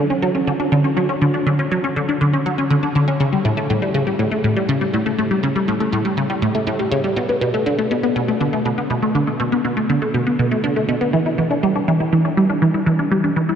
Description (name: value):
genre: ambient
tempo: 121 BPM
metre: 4/4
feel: straight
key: B minor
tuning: A4 = 439 Hz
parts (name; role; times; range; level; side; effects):
- resonant blip pluck; solo; 0.0-13.6 s; A2 to E4; -16 LUFS; equal; phaser, analog chorus, analog delay
room: wet huge ambient reverb, RT60 7.7 s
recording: dark, warm production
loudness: -16 LUFS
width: side -8 dB against mid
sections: 0.0-13.6 A section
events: none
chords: none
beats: 0.22 0.72 | 1.22 1.71 2.21 2.70 | 3.20 3.69 4.19 4.69 | 5.18 5.68 6.17 6.67 | 7.17 7.66 8.16 8.65 | 9.15 9.65 10.14 10.64 | 11.13 11.63 12.12 12.62 | 13.12